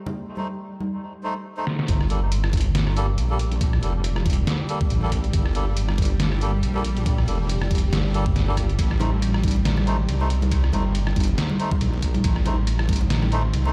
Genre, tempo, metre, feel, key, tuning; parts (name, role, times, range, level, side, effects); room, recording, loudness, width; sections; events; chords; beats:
deep dubstep; 139 BPM; 4/4; swing 56% on 16ths, half-time; G minor; A4 = 440 Hz
bowed-like drone; sustained chords; 0.0-13.7 s; G3; -36 LUFS; equal; built-in reverb, phaser
congas; percussion; 0.1-0.9, 9.0-13.7 s; -32 LUFS; equal; dub echo
melodica; stabs; 0.4-13.7 s; G3 to C5; -34 LUFS; equal; dub echo
trip hop sampler-style drum kit; drums; 1.7-13.6 s; hi-hat, ride cymbal, rim click, snare drum; -31 LUFS; equal; overdrive, low-pass filter on snare, low-pass filter on hats, low-pass filter on cymbals
wobble bass; bass; 1.9-13.7 s; F1 to C2; -25 LUFS; equal; chorus, tube saturation
electronic kick drum; drums; 1.9-13.0 s; -25 LUFS; equal; overdrive
digital ambience; played on a big sound system in a bare room, large studio reverb; -23 LUFS; mono
0.0-1.9 A section; 1.9-13.7 B section
drum fill 1.7; drop 1.9-13.7
0.0 Adim; 1.9 Gmadd9; 8.8 Adim
| 0.15 0.59 1.02 1.45 | 1.88 2.31 2.75 3.18 | 3.61 4.04 4.47 4.90 | 5.33 5.77 6.20 6.63 | 7.06 7.49 7.92 8.36 | 8.79 9.22 9.65 10.08 | 10.52 10.95 11.38 11.81 | 12.24 12.67 13.11 13.54